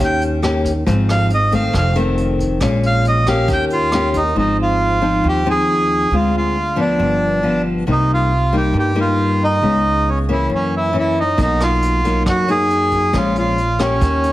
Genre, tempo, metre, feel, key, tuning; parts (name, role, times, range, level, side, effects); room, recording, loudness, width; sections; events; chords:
bossa nova; 137 BPM; 4/4; straight; Ab major; A4 = 436 Hz
accordion; melody; 0.0-14.3 s; Db4 to G5; -18 LUFS; right 1 dB; plate reverb
nylon-string guitar; accompaniment; 0.0-14.3 s; F2 to G4; -18 LUFS; left 2 dB
upright bass; bass; 0.0-14.3 s; F1 to G2; -21 LUFS; right 1 dB
vintage brush drum kit; drums; 0.2-4.2, 11.4-14.3 s; hi-hat, kick drum, rim click; -25 LUFS; right 1 dB
moderate large studio reverb, RT60 1.0 s; heavily compressed radio sound; -14 LUFS; side -15 dB against mid
0.0-4.4 A section; 4.4-14.3 B section
accordion solo 0.0-4.4
0.0 Eb7; 0.9 Ab6; 1.7 F7; 2.6 Bbm7; 3.5 Eb7; 4.4 Ab6; 6.1 Dm7b5; 7.0 G7; 7.9 Cm7; 9.6 Dbm7; 10.5 Gb7; 11.4 Bmaj7; 13.1 Bbm7